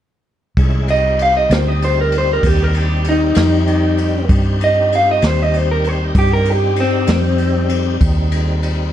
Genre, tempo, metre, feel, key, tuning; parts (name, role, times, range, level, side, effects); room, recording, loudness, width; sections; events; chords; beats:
slow blues; 64 BPM (dotted quarters); 12/8; straight; C minor; A4 = 439 Hz
tonewheel organ; sustained chords; 0.6-8.9 s; G3 to Ab4; -24 LUFS; equal; overdrive, chorus vibrato, slow rotary speaker
vintage muted fingered electric bass; bass; 0.6-8.9 s; C2 to G2; -17 LUFS; equal
jazz brush drum kit; drums; 0.6-8.8 s; kick drum, ride cymbal, snare drum; -20 LUFS; equal
electric guitar through a small old amp; melody; 0.9-8.0 s; C4 to F5; -16 LUFS; equal
little or no reverb; dark, warm production; -13 LUFS; side -11 dB against mid
0.6-8.9 A section
clean electric guitar solo 0.6-8.9
0.6 Cm
| 0.58 1.50 2.43 3.36 | 4.29 5.22 6.15 7.08 | 8.01